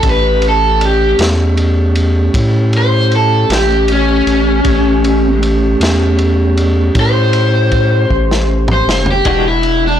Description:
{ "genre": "slow blues", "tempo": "52 BPM (dotted quarters)", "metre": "12/8", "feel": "straight", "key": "A mixolydian", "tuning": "A4 = 440 Hz", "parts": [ { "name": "raw garage guitar", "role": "melody", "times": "0.0-10.0 s", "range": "C#4 to C5", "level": "-14 LUFS", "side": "left 1 dB", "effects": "overdrive" }, { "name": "mellow tonewheel organ", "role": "sustained chords", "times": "0.0-10.0 s", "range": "G#3 to F#5", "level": "-18 LUFS", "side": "right 2 dB", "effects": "slow rotary speaker" }, { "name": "saturated sub bass", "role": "bass", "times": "0.0-10.0 s", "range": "E1 to A2", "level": "-14 LUFS", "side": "equal", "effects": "none" }, { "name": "crunchy breakbeat drum kit", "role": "drums", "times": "0.0-9.8 s", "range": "kick drum, ride cymbal, snare drum, toms", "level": "-20 LUFS", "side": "equal", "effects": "none" }, { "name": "clean electric guitar", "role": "accompaniment", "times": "9.3-9.5 s", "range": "E3 to F#4", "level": "-19 LUFS", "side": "left 4 dB", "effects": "tremolo" } ], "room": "small room ambience", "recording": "blown-out, overdriven recording, overdrive", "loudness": "-10 LUFS", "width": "side -10 dB against mid", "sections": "0.0-10.0 A section", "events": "drum fill 8.1-9.3", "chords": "0.0 A7; 9.3 E9", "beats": "| 0.04 1.19 2.34 3.49 | 4.64 5.80 6.95 8.10 | 9.25" }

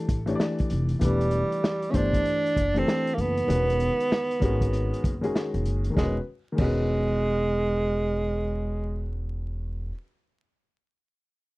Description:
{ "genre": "hip hop, jazz-hop", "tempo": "97 BPM", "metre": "4/4", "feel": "swing 63% on 16ths", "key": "E major", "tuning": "A4 = 440 Hz", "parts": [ { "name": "dark upright piano", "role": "accompaniment", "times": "0.0-9.9 s", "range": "D#3 to D5", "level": "-30 LUFS", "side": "left 2 dB", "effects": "none" }, { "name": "upright bass", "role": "bass", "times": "0.1-9.9 s", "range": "E1 to A1", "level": "-28 LUFS", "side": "equal", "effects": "none" }, { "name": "vintage drum kit", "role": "drums", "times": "0.1-6.8 s", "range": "crash cymbal, hi-hat, kick drum, snare drum", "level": "-27 LUFS", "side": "equal", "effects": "none" }, { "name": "warm tenor saxophone", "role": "melody", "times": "1.0-9.2 s", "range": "G3 to D4", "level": "-26 LUFS", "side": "right 2 dB", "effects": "none" } ], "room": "little or no reverb", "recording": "dry, close 1970s-style studio recording, vinyl crackle", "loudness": "-23 LUFS", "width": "side -20 dB against mid", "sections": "0.0-6.0 A section; 6.0-8.4 B section", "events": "none", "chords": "0.0 G7sus2; 1.0 Cmaj9#11/E; 3.5 Emaj9", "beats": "0.40 | 1.02 1.64 2.26 2.88 | 3.50 4.11 4.73 5.35 | 5.97 6.59 7.21 7.83" }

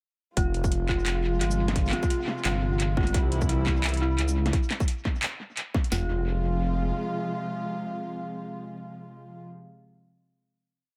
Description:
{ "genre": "half-time drum and bass", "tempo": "173 BPM", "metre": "4/4", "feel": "swing 57% on 16ths, half-time", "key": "F harmonic minor", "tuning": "A4 = 440 Hz", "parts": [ { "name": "warm chamber string section", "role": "sustained chords", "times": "0.4-9.5 s", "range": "C3 to F4", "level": "-35 LUFS", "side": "equal", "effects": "sidechain pumping" }, { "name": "dark detuned synth bell", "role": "arpeggios", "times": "0.4-6.1 s", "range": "E4 to F4", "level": "-35 LUFS", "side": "equal", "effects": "chorus, tremolo, vintage 12-bit sampler grit, analog delay" }, { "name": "dark detuned saw bass", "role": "bass", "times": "0.4-6.9 s", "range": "F1 to Db2", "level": "-29 LUFS", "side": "equal", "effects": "none" }, { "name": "drum and bass drum kit", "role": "drums", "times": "0.4-5.9 s", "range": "handclaps, hi-hat, shaker, snare drum", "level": "-34 LUFS", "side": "equal", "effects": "tape echo" }, { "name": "trap drum kit", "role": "drums", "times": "0.4-6.0 s", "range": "kick drum, snare drum, toms", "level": "-29 LUFS", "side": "equal", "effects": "overdrive" } ], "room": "light reverb, digital ambience", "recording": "echo-heavy mix", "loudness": "-27 LUFS", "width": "mono", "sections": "0.4-5.9 drop; 5.9-8.7 final chord", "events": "drop 0.4-5.9", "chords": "0.4 Fm; 3.1 C; 5.9 Fm", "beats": "| 0.37 0.72 1.06 1.41 | 1.76 2.10 2.45 2.80 | 3.14 3.49 3.84 4.18 | 4.53 4.88 5.22 5.57 | 5.92 6.26 6.61 6.96 | 7.30 7.65 8.00 8.35" }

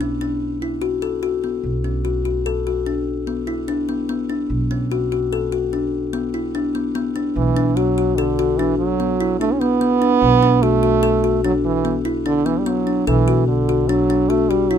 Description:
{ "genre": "contemporary instrumental, chamber music in an uneven meter", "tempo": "147 BPM", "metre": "7/4", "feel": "straight", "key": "B minor", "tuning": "A4 = 439 Hz", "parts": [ { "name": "kalimba", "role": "arpeggios", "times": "0.0-14.8 s", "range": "B3 to A4", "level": "-20 LUFS", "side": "left 4 dB", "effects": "none" }, { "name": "upright bass", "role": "bass", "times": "0.0-14.8 s", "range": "B1", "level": "-24 LUFS", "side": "right 1 dB", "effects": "none" }, { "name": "warm French horn", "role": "second line", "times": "7.4-14.8 s", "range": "D3 to C#4", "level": "-19 LUFS", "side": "right 8 dB", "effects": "none" } ], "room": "little or no reverb", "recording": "close, detailed microphones", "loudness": "-17 LUFS", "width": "side -8 dB against mid", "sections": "0.0-1.6 A section; 1.6-13.1 B section; 13.1-14.8 C section", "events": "none", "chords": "0.0 Bm; 7.4 D/B", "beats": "0.00 0.41 0.82 1.23 | 1.64 2.05 2.46 2.87 3.27 3.68 4.09 | 4.50 4.91 5.32 5.73 6.13 6.54 6.95 | 7.36 7.77 8.18 8.59 8.99 9.40 9.81 | 10.22 10.63 11.03 11.44 11.85 12.26 12.67 | 13.07 13.48 13.89 14.30 14.70" }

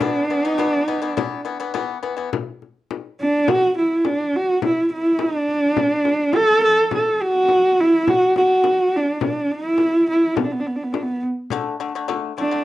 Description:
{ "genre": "mongolian traditional, Mongolian folk", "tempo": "104 BPM", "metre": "4/4", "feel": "straight", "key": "unclear", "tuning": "A4 = 440 Hz", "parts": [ { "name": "warm horsehead fiddle", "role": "melody", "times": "0.0-12.6 s", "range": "B3 to A4", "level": "-17 LUFS", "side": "right 1 dB", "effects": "cassette tape" }, { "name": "pipa", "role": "arpeggios", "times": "0.0-2.3, 11.5-12.6 s", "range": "D3 to B3", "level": "-25 LUFS", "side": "left 7 dB", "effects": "cassette tape" }, { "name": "frame drum", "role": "percussion", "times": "0.0-12.4 s", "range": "none", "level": "-26 LUFS", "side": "left 8 dB", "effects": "none" } ], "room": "moderate studio reverb, RT60 0.6 s", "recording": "home recording on cassette", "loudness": "-17 LUFS", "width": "side -15 dB against mid", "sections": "0.0-2.3 A section; 2.3-12.6 A section", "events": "none", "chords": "0.0 E5; 2.3 N.C.; 11.5 D5", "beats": "| 0.01 0.59 1.17 1.74 | 2.32 2.89 3.47 4.04 | 4.62 5.19 5.77 6.34 | 6.92 7.49 8.07 8.64 | 9.21 9.79 10.36 10.94 | 11.51 12.09" }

